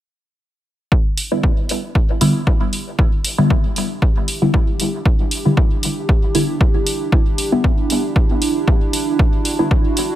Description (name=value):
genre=dub techno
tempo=116 BPM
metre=4/4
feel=swing 54% on 16ths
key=E minor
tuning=A4 = 443 Hz
part: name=dark analog pad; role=sustained chords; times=2.9-10.2 s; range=D4 to G4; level=-23 LUFS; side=right 3 dB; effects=chorus, sidechain pumping
part: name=electronic kick drum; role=drums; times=0.9-9.8 s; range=none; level=-15 LUFS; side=equal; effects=none
part: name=electronic hi-hat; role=drums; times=1.2-10.1 s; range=none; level=-23 LUFS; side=equal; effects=none
part: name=filtered dub chord stab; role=stabs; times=1.3-9.8 s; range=D3 to E4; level=-20 LUFS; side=left 1 dB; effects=phaser, sidechain pumping, dub echo
room=light reverb, digital ambience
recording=none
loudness=-15 LUFS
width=side -13 dB against mid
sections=0.9-10.2 A section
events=filter sweep on synth stab 0.9-10.2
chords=0.9 Em7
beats=| 0.92 1.43 1.95 2.47 | 2.99 3.50 4.02 4.54 | 5.05 5.57 6.09 6.61 | 7.12 7.64 8.16 8.68 | 9.19 9.71